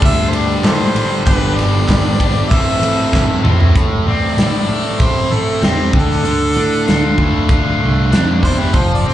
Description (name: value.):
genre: classic rock.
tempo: 96 BPM.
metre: 4/4.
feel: straight.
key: unclear.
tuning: A4 = 442 Hz.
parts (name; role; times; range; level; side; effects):
clear harmonica; melody; 0.0-9.1 s; G4 to E5; -21 LUFS; equal; digital delay.
distorted electric guitar; riff; 0.0-9.1 s; G2 to A4; -20 LUFS; right 9 dB; overdrive, slapback echo.
overdriven electric guitar; riff; 0.0-9.1 s; G2 to A4; -21 LUFS; left 10 dB; slapback echo.
growling picked electric bass; bass; 0.0-9.1 s; F1 to A2; -17 LUFS; equal; overdrive.
big rock drum kit; drums; 0.0-8.9 s; hi-hat, kick drum, ride cymbal, snare drum, toms; -16 LUFS; equal; none.
group handclap; percussion; 0.6-3.3 s; none; -28 LUFS; right 2 dB; none.
room: little or no reverb.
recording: live gig heard through the venue's PA, club reverb, nothing above 10.3 kHz.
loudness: -12 LUFS.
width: side -12 dB against mid.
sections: 0.0-3.8 A section; 3.8-9.1 B section.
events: drum fill 3.1-3.8; harmonica solo 3.8-9.1.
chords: 0.0 Dsus4; 1.3 G; 2.5 Am; 5.9 Dmadd9.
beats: 0.03 0.65 | 1.27 1.89 2.51 3.13 | 3.75 4.38 5.00 5.62 | 6.25 6.87 7.50 8.12 | 8.75.